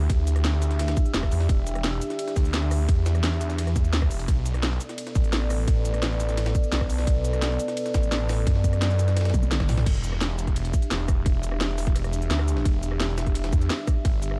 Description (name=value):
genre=dark technical drum and bass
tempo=172 BPM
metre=4/4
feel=straight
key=E minor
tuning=A4 = 445 Hz
part: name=dark analog pad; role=sustained chords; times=0.0-14.4 s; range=B3 to E5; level=-34 LUFS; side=equal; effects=chorus, phaser, sidechain pumping
part: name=snarling distorted saw bass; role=bass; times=0.0-14.4 s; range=E1 to F#2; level=-27 LUFS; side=equal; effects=distortion, sidechain pumping
part: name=drum and bass drum kit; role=drums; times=0.1-14.4 s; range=cabasa, crash cymbal, hi-hat, ride cymbal, rim click, snare drum, toms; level=-33 LUFS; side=equal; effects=none
part: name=electronic kick drum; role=drums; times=0.1-14.1 s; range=none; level=-25 LUFS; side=equal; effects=none
part: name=jungle sampler-style drum kit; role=drums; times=0.1-14.3 s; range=hi-hat, snare drum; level=-42 LUFS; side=equal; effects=none
room=digital ambience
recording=dark, warm production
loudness=-24 LUFS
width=mono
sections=0.0-9.9 A section; 9.9-14.4 A section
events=drop 0.0-9.9, 9.9-14.4; drum fill 9.3-9.9; band accent 9.5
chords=0.0 Em7; 4.3 Bm7; 9.9 Em7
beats=| 0.10 0.45 0.79 1.14 | 1.49 1.84 2.19 2.54 | 2.89 3.23 3.58 3.93 | 4.28 4.63 4.98 5.33 | 5.68 6.03 6.38 6.72 | 7.07 7.42 7.77 8.12 | 8.47 8.82 9.16 9.51 | 9.86 10.21 10.56 10.91 | 11.26 11.61 11.96 12.30 | 12.65 13.00 13.35 13.70 | 14.05